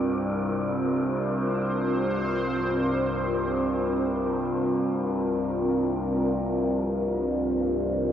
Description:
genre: dark ambient drone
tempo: free time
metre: none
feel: none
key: unclear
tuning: A4 = 445 Hz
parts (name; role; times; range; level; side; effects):
- sweeping resonant pad; sustained chords; 0.0-8.1 s; C4 to D5; -26 LUFS; equal; chorus
- overtone-sweeping drone; drone; 0.0-8.1 s; C2 to G2; -28 LUFS; equal; chorus, built-in reverb
- wind-like tuned noise texture; texture; 0.0-6.4 s; D5; -41 LUFS; right 2 dB; built-in reverb
room: wet huge ambient reverb, RT60 7.7 s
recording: worn, warbling old tape, cassette tape, warbly pitch drift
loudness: -24 LUFS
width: side -9 dB against mid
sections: 0.0-6.4 A section; 6.4-8.1 B section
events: none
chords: 0.0 Bb; 6.4 Bb5

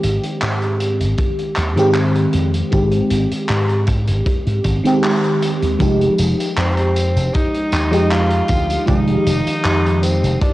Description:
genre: vaporwave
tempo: 78 BPM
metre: 4/4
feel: swing 53% on 16ths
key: F minor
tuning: A4 = 440 Hz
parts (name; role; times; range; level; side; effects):
- FM electric piano with soft pad layer; accompaniment; 0.0-10.5 s; Eb3 to G4; -18 LUFS; equal; phaser, analog chorus, cassette tape, tape echo
- slap bass with an envelope filter; bass; 0.0-10.4 s; F1 to Ab2; -19 LUFS; equal; none
- loose indie drum kit; drums; 0.0-10.5 s; handclaps, hi-hat, tambourine; -25 LUFS; equal; cassette tape
- kick drum; drums; 1.2-10.5 s; none; -19 LUFS; equal; cassette tape
- breathy tenor saxophone; melody; 6.6-10.5 s; C4 to F4; -22 LUFS; equal; tape echo
room: light reverb, studio reverb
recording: home recording on cassette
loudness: -14 LUFS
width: side -16 dB against mid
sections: 0.0-5.8 A section; 5.8-10.5 B section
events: band accent 5.0-5.4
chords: 0.0 Abmaj7; 5.8 Fm9

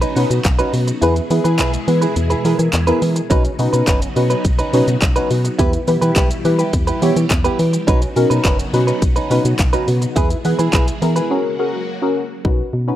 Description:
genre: dance-pop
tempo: 105 BPM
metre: 4/4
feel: straight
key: B major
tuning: A4 = 440 Hz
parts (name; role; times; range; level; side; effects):
- phased string machine; sustained chords; 0.0-12.4 s; B2 to G#4; -27 LUFS; equal; ensemble chorus, phaser, sidechain pumping
- direct-recorded clean electric guitar; riff; 0.0-11.3 s; C#4 to B4; -22 LUFS; right 3 dB; wide subtle chorus
- organ-like FM bass; bass; 0.0-12.9 s; F#1 to E3; -18 LUFS; equal; sidechain pumping
- pop drum kit; drums; 0.0-12.6 s; handclaps, hi-hat, kick drum, shaker; -19 LUFS; equal; none
- deep mellow chord stab; accompaniment; 0.2-13.0 s; B3 to C#5; -20 LUFS; left 1 dB; chorus, sidechain pumping
- group handclap; percussion; 0.5-10.9 s; none; -29 LUFS; left 2 dB; none
room: light reverb, digital ambience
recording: rough home demo mix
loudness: -14 LUFS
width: side -12 dB against mid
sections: 0.0-12.4 A section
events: kick muted 1.0-3.3; break 11.3-12.4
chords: 0.0 Badd9; 1.0 E; 3.3 Badd9; 5.6 Em; 7.9 Badd9; 10.2 E; 11.3 F#add9; 12.4 Badd9

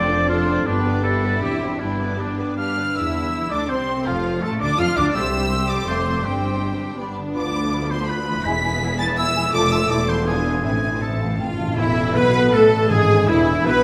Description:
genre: classical, dramatic, fast romantic movement for symphony orchestra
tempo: 162 BPM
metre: 3/4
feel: straight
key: C major, A minor from 7.4 s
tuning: A4 = 440 Hz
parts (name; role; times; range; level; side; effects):
- clear symphonic violin section; melody; 0.0-13.8 s; E4 to B6; -31 LUFS; equal; none
- clear oboe; second line; 0.0-13.8 s; D4 to B5; -29 LUFS; equal; none
- clear symphonic violin section; second line; 0.0-13.8 s; A3 to B5; -35 LUFS; equal; none
- mellow clarinet; second line; 0.0-13.8 s; C4 to F5; -31 LUFS; equal; none
- clear symphonic viola section; accompaniment; 0.0-13.8 s; E3 to C5; -28 LUFS; equal; none
- mellow French horn section; sustained chords; 0.0-13.8 s; E3 to F4; -29 LUFS; equal; none
- concert harp; arpeggios; 0.0-13.8 s; E2 to C5; -31 LUFS; equal; none
- clear symphonic double bass section; bass; 0.0-13.8 s; E1 to F2; -30 LUFS; equal; none
- rich symphonic cello section; bass; 0.0-13.8 s; C2 to F3; -29 LUFS; equal; none
- mellow flute section; second line; 3.0-13.8 s; E4 to F6; -30 LUFS; equal; none
- timpani; percussion; 8.5-13.4 s; E2 to A2; -30 LUFS; equal; none
room: wet recital hall reverb, RT60 1.5 s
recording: none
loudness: -20 LUFS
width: mono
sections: 0.0-3.0 A section; 3.0-11.8 B section; 11.8-13.8 A section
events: timpani fill 10.6-11.8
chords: 0.0 Dm7/F; 0.7 G; 1.4 C/E; 1.8 G; 3.0 C/E; 4.1 F; 5.2 C; 5.9 F; 6.2 Gsus4; 7.0 G; 7.4 Bdim/D; 8.5 E; 9.5 F; 9.9 Am/E; 10.3 E7b9; 10.6 Am; 11.8 Am/E; 12.9 E7

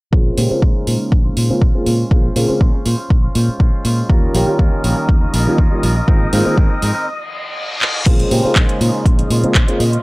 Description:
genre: filtered disco house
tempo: 121 BPM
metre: 4/4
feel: straight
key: Bb dorian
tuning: A4 = 440 Hz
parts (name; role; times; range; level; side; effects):
- warm baby grand piano; accompaniment; 0.1-9.8 s; Db3 to Bb4; -19 LUFS; equal; phaser, vintage 12-bit sampler grit, sidechain pumping, low-pass filter
- electric guitar with an envelope filter; riff; 0.1-10.0 s; F3 to C5; -26 LUFS; equal; vintage 12-bit sampler grit, sidechain pumping, low-pass filter
- fingered electric bass; bass; 0.1-10.0 s; Ab1 to Bb2; -18 LUFS; equal; transformer saturation, sidechain pumping, low-pass filter
- electronic kick drum; drums; 0.1-9.7 s; none; -14 LUFS; equal; overdrive
- house drum kit; drums; 0.4-10.0 s; crash cymbal, handclaps, hi-hat; -22 LUFS; right 1 dB; sidechain pumping on hats, sidechain pumping on cymbals
- warm studio string section; sustained chords; 4.1-10.0 s; Eb5 to Eb6; -29 LUFS; equal; sidechain pumping, low-pass filter
- reverse cymbal; sound effects; 7.3-8.1 s; none; -22 LUFS; left 2 dB; none
room: digital ambience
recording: dry, gritty hardware recording, transformer saturation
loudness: -12 LUFS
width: side -23 dB against mid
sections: 0.1-8.1 A section; 8.1-10.0 B section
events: filter sweep 0.1-8.1; break 7.1-8.1; reverse cymbal 7.3-8.1; drum fill 7.8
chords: 0.1 Bbm9; 4.1 Eb9; 6.1 Ab69; 8.1 Bbm9

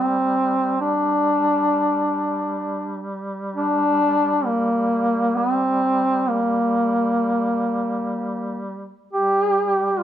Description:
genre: caucasian folk, Caucasian lament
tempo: free time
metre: none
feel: none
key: G minor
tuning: A4 = 441 Hz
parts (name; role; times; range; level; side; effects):
- mellow duduk; melody; 0.0-10.0 s; Bb3 to G4; -19 LUFS; equal; none
- warm duduk; drone; 0.0-10.0 s; G3; -29 LUFS; right 1 dB; none
room: light reverb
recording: close, detailed microphones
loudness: -19 LUFS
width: side -10 dB against mid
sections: 0.0-10.0 A section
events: none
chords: none

